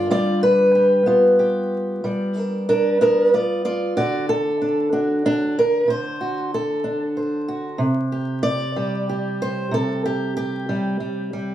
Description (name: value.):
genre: acoustic country blues, solo or duo.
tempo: 62 BPM (dotted quarters).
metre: 12/8.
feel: straight.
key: G mixolydian.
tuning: A4 = 440 Hz.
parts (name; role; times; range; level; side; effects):
fingerpicked acoustic archtop guitar; solo; 0.0-11.5 s; C3 to D5; -18 LUFS; equal; none.
room: light reverb.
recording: vinyl crackle, small room reverb.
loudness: -18 LUFS.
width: side -12 dB against mid.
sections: 0.0-11.5 A section.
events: steel-string acoustic guitar solo 0.0-11.5.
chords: 0.0 G7; 4.0 D7; 7.8 C5.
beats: | 0.10 1.06 2.03 2.99 | 3.95 4.92 5.88 6.84 | 7.80 8.76 9.72 10.69.